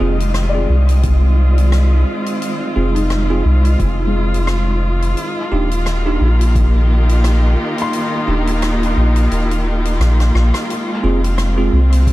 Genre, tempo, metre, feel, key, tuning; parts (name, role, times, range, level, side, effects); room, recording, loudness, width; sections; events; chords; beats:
ambient dub; 87 BPM; 4/4; swing 57% on 16ths; A4 = 440 Hz
rich chamber string section; sustained chords; 0.0-12.1 s; Eb3 to G4; -20 LUFS; equal
bell-like tine electric piano; stabs; 0.0-11.8 s; C4 to Ab4; -23 LUFS; right 3 dB; dub echo
soft dub sub bass; bass; 0.0-12.1 s; Eb1 to C2; -14 LUFS; equal
wind-like tuned noise texture; texture; 0.0-10.7 s; Eb3 to Eb5; -30 LUFS; right 1 dB; built-in reverb
soft-mallet drum kit; drums; 0.2-12.1 s; hi-hat, rim click; -29 LUFS; left 1 dB; studio ambience, dub echo
felt-muted upright piano; arpeggios; 0.5-10.7 s; Ab3 to C6; -28 LUFS; left 4 dB; dub echo
electronic kick drum; drums; 1.0-6.7, 12.1 s; -20 LUFS; equal; studio ambience
small room ambience; dark, warm production; -13 LUFS; side -17 dB against mid
0.0-10.7 A section; 10.7-12.1 B section
kick drops out 9.3-10.7; drum fill 10.2-10.7
0.0 Fm; 5.2 Eb
0.35 1.04 1.73 | 2.42 3.10 3.79 4.48 | 5.17 5.86 6.55 7.24 | 7.93 8.62 9.31 10.00 | 10.69 11.38 12.07